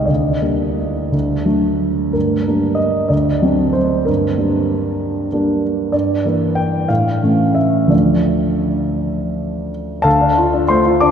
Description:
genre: classical, romantic character piece for solo piano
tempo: 55-66 BPM (dotted quarters)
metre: 6/8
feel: rubato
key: G minor, D minor from 5.9 s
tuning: A4 = 440 Hz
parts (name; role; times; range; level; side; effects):
- warm concert grand piano; solo; 0.0-11.1 s; C2 to D6; -14 LUFS; equal; none
room: wet cathedral reverb, RT60 4.4 s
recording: dark, warm production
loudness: -14 LUFS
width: side -8 dB against mid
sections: 0.0-10.1 A section; 10.1-11.1 B section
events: none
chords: 0.1 Gm/D; 1.1 D; 2.2 Gm; 3.1 D7; 4.1 Gm; 5.9 Em7b5/G; 6.9 A; 7.9 Dm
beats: | 0.09 1.13 | 2.15 3.12 | 4.09 5.01 | 5.93 6.89 | 7.92 8.98 | 10.05 11.02

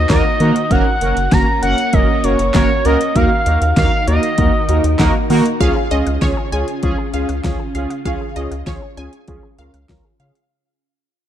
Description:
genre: synth-pop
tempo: 98 BPM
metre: 4/4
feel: straight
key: unclear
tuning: A4 = 440 Hz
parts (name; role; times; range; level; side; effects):
- expressive synth lead; melody; 0.0-5.3 s; Db5 to Bb5; -18 LUFS; equal; chorus, tape echo
- soft string machine; sustained chords; 0.0-10.5 s; Db3 to C5; -25 LUFS; equal; ensemble chorus, low-pass filter
- rubbery square bass; bass; 0.0-10.3 s; Gb1 to Eb3; -18 LUFS; equal; none
- analog synth brass; accompaniment; 0.1-10.3 s; Bb3 to Bb4; -19 LUFS; right 2 dB; chorus, low-pass filter
- deep house drum kit; drums; 0.1-10.5 s; handclaps, hi-hat, kick drum, snare drum; -18 LUFS; equal; overdrive
- wide unison pluck; second line; 5.6-10.3 s; Db5 to Ab5; -27 LUFS; left 1 dB; phaser, tape echo
- analog pluck; arpeggios; 5.6-10.4 s; F3 to F5; -30 LUFS; left 4 dB; chorus, low-pass filter, tape echo
room: light reverb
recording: dark, warm production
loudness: -13 LUFS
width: side -10 dB against mid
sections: 0.0-5.6 A section; 5.6-10.5 B section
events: fade-out 5.6-10.5; filter sweep 5.6-10.5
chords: 0.0 Ebm; 0.7 Gb; 3.2 Ebm; 5.6 Db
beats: 0.10 | 0.71 1.32 1.93 2.54 | 3.16 3.77 4.38 4.99 | 5.61 6.22 6.83 7.44 | 8.05 8.67 9.28 9.89

